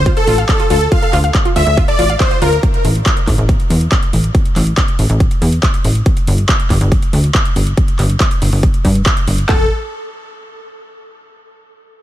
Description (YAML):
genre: uplifting trance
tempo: 140 BPM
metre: 4/4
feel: straight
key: unclear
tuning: A4 = 439 Hz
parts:
  - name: supersaw chords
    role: melody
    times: 0.0-2.6, 9.5-9.6 s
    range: A4 to F5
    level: -18 LUFS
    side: left 1 dB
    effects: sidechain pumping, digital delay
  - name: plucky analog bass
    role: bass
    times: 0.0-9.7 s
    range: F1 to G2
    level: -14 LUFS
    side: equal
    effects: tube saturation, sidechain pumping
  - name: analog pluck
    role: arpeggios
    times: 0.1-2.5 s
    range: F4 to F5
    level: -23 LUFS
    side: right 1 dB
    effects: chorus, sidechain pumping, digital delay
  - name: big-room dance drum kit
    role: drums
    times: 0.1-9.6 s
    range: handclaps, kick drum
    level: -14 LUFS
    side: equal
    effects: overdrive
  - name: big-room dance drum kit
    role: drums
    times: 0.1-9.5 s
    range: handclaps, hi-hat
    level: -21 LUFS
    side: equal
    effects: overdrive, sidechain pumping on hats, sidechain pumping on cymbals
room: little or no reverb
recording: none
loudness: -11 LUFS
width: side -14 dB against mid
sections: 0.0-9.5 A section; 9.5-11.2 B section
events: none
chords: 0.0 Dm; 2.6 A5; 6.1 G5; 9.5 N.C.